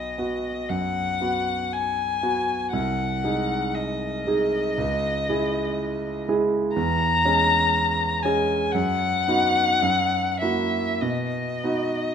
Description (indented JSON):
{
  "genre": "classical, romantic duo for violin and grand piano",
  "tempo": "47-62 BPM",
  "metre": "4/4",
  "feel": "rubato",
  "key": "B major",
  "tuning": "A4 = 440 Hz",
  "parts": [
    { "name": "warm violin", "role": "melody", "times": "0.0-12.1 s", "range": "D#5 to A#5", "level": "-24 LUFS", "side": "left 4 dB", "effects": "none" },
    { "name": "clear concert grand piano", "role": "accompaniment", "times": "0.0-12.1 s", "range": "B1 to G#4", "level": "-24 LUFS", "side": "right 3 dB", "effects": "none" }
  ],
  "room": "moderate recital hall reverb, RT60 1.6 s",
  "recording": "minimal, uncompressed stereo recording",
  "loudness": "-21 LUFS",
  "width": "side -7 dB against mid",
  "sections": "0.0-12.1 A section",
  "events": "none",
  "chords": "0.0 B; 2.7 G#7/B#; 4.8 C#m; 6.8 C#m/E; 8.7 B/F#; 9.8 F#7; 11.0 B",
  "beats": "0.70 1.72 | 2.73 3.75 4.78 5.78 | 6.75 7.74 8.74 9.83 | 11.02"
}